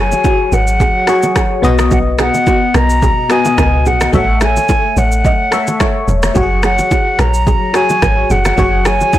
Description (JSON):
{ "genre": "afrobeats", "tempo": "108 BPM", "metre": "4/4", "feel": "swing 55% on 16ths", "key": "unclear", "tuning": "A4 = 440 Hz", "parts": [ { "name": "mellow silver concert flute", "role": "melody", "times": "0.0-9.2 s", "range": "F#5 to A#5", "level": "-15 LUFS", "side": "right 1 dB", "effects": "none" }, { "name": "barking FM electric piano", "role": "accompaniment", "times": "0.0-9.2 s", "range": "B2 to E5", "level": "-17 LUFS", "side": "left 4 dB", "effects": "chorus, tremolo" }, { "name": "nylon-string guitar", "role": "riff", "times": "0.0-9.2 s", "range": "F#4 to D#5", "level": "-21 LUFS", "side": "right 5 dB", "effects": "digital delay" }, { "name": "deep log drum bass", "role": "bass", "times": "0.0-9.0 s", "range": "E1 to C#2", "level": "-15 LUFS", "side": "equal", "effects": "none" }, { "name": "downlifter", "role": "sound effects", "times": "0.1-1.9 s", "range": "none", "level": "-36 LUFS", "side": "equal", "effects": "none" }, { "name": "afro-pop drum kit", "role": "drums", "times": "0.1-9.2 s", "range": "finger snaps, kick drum, rim click, shaker", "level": "-17 LUFS", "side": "equal", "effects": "soft clipping on snare" }, { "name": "bongos and congas", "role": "percussion", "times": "0.1-9.2 s", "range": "none", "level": "-22 LUFS", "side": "right 2 dB", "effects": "none" } ], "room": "light reverb", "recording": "blown-out, overdriven recording, overdrive", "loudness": "-10 LUFS", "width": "side -13 dB against mid", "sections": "0.0-9.2 A section", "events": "FM electric piano fill 5.5-6.4", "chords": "0.0 F#sus2; 1.6 B; 4.1 A; 6.4 F#sus2", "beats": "0.25 0.80 1.36 | 1.91 2.47 3.02 3.58 | 4.13 4.69 5.25 5.80 | 6.36 6.91 7.47 8.02 | 8.58 9.13" }